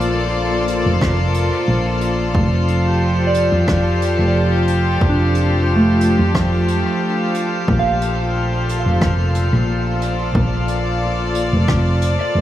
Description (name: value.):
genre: ambient dub.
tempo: 90 BPM.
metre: 4/4.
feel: swing 53% on 16ths.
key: F major.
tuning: A4 = 440 Hz.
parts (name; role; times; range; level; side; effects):
rich chamber string section; sustained chords; 0.0-12.4 s; Bb2 to D5; -20 LUFS; left 1 dB; none.
soft synth bell; arpeggios; 0.0-12.4 s; A3 to F5; -22 LUFS; right 1 dB; chorus, phaser, tape echo.
hollow-body short-scale fingered electric bass; bass; 0.0-12.4 s; F1 to F2; -18 LUFS; equal; none.
soft brush drum kit; drums; 0.0-12.2 s; hi-hat, rim click; -31 LUFS; right 1 dB; dub echo.
drifting glass-harmonics texture; texture; 0.0-12.4 s; F4 to F5; -26 LUFS; left 1 dB; chorus, built-in reverb.
electronic kick drum; drums; 1.0-11.8 s; none; -21 LUFS; equal; overdrive.
room: moderate huge ambient reverb, RT60 3.7 s.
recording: vinyl crackle, studio reverb.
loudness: -15 LUFS.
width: side -12 dB against mid.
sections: 0.0-12.4 A section.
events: none.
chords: 0.0 Fadd9.